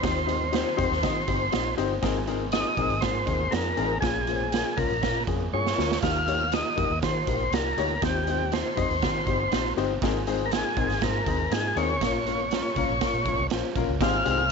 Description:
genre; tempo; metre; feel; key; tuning
uptempo 1960s-style soul; 120 BPM; 4/4; straight; Ab major; A4 = 440 Hz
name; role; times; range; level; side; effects
tonewheel organ; melody; 0.0-14.5 s; G4 to F5; -27 LUFS; left 1 dB; slow rotary speaker
warm upright piano; accompaniment; 0.0-14.5 s; Ab2 to Eb5; -29 LUFS; left 14 dB; none
vintage muted fingered electric bass; bass; 0.0-14.5 s; G1 to Eb3; -32 LUFS; equal; none
raw garage drum kit; drums; 0.0-14.4 s; hi-hat, kick drum, snare drum; -29 LUFS; right 6 dB; none
room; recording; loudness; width
light reverb, small room reverb; 1960s-style stereo with parts hard left and right, nothing above 7.8 kHz; -23 LUFS; side -5 dB against mid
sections
0.0-14.0 A section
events
drum fill 5.5-6.0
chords
0.0 Cm/Eb; 2.0 Abadd9; 4.0 Bbm; 6.0 Eb; 8.0 Cm/Eb; 10.0 Abadd9; 12.0 Bbm; 14.0 Abmaj7

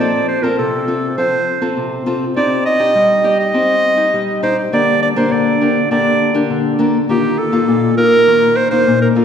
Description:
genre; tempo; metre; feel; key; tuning
samba; 102 BPM; 4/4; straight; unclear; A4 = 441 Hz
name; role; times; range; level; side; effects
clear clarinet; melody; 0.0-9.2 s; G4 to Eb5; -14 LUFS; right 2 dB; none
nylon-string guitar; accompaniment; 0.0-9.2 s; Bb2 to D5; -16 LUFS; left 3 dB; none
room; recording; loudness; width
wet concert hall reverb, RT60 2.4 s; recorded in a church or concert hall; -12 LUFS; side -8 dB against mid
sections
0.0-9.2 A section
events
none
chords
0.0 F; 2.4 Cmadd9; 4.7 Gm/D; 7.1 Ebsus2

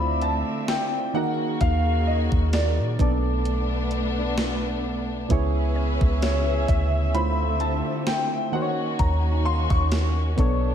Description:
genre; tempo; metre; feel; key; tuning
contemporary R&B; 65 BPM; 4/4; swing 54% on 16ths; unclear; A4 = 440 Hz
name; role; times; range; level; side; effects
warm grand piano; melody; 0.0-10.7 s; C#5 to C#6; -28 LUFS; left 2 dB; analog chorus, analog delay
soft electric-piano-like synth keys; accompaniment; 0.0-10.7 s; B2 to D5; -28 LUFS; right 2 dB; chorus
warm studio string section; sustained chords; 0.0-10.7 s; C3 to E5; -30 LUFS; left 1 dB; sidechain pumping
soft 808-style bass; bass; 0.0-10.7 s; B1 to A#2; -24 LUFS; equal; none
gated 80s digital drum machine; drums; 0.2-10.6 s; hi-hat, kick drum, snare drum; -25 LUFS; equal; gated reverb, gated reverb snare
mallet-like synth pluck; texture; 5.8-10.7 s; C#5 to E#5; -43 LUFS; left 2 dB; none
room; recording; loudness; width
light reverb, digital ambience; none; -21 LUFS; side -9 dB against mid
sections
0.0-10.7 A section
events
none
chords
0.0 Dm7; 1.1 D#m7; 3.0 Bm7; 5.3 C#m7; 7.1 Dm7; 8.5 D#m7

